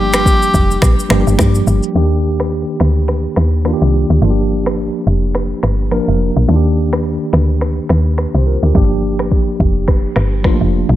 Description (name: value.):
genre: afrobeats.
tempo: 106 BPM.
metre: 4/4.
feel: swing 58% on 16ths.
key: G minor.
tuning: A4 = 441 Hz.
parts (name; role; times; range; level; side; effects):
breathy tenor saxophone; melody; 0.0-1.1 s; G4; -18 LUFS; left 1 dB; digital delay.
mellow tine electric piano; accompaniment; 0.0-11.0 s; Eb3 to C5; -17 LUFS; equal; medium stereo tremolo.
woody log drum bass; bass; 0.0-11.0 s; F1 to G2; -14 LUFS; equal; none.
afro-pop drum kit; drums; 0.1-10.6 s; finger snaps, kick drum, rim click, shaker; -16 LUFS; equal; none.
room: digital ambience.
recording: low-pass filter.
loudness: -12 LUFS.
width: side -13 dB against mid.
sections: 0.0-2.0 A section; 2.0-11.0 B section.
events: filter sweep 2.0-11.0.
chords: 0.0 Gm7; 2.0 Ebmaj7; 4.2 Gm7; 6.5 Ebmaj7; 8.8 Gm7.